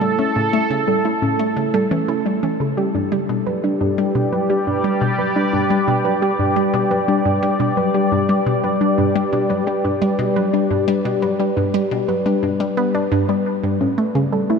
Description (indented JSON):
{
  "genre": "ambient, sequencer-driven space music",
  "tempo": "87 BPM",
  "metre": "4/4",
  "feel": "straight",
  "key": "unclear",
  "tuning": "A4 = 440 Hz",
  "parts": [
    { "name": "sweeping resonant pad", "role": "sustained chords", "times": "0.0-14.6 s", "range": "G3 to D5", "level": "-19 LUFS", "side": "left 1 dB", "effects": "chorus" },
    { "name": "soft round pluck", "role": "arpeggios", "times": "0.0-14.6 s", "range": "C#4 to D5", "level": "-24 LUFS", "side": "moving between left 1 dB and right 7 dB", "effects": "chorus, auto-pan, analog delay" },
    { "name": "hollow square pluck", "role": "riff", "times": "0.0-14.6 s", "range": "G2 to E4", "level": "-21 LUFS", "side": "left 1 dB", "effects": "chorus, analog delay" }
  ],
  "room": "wet huge ambient reverb, RT60 8.3 s",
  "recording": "in a vast, echoing space",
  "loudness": "-16 LUFS",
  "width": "side -5 dB against mid",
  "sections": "0.0-14.6 A section",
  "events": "none",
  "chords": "0.0 A; 2.8 G; 13.8 Aadd9"
}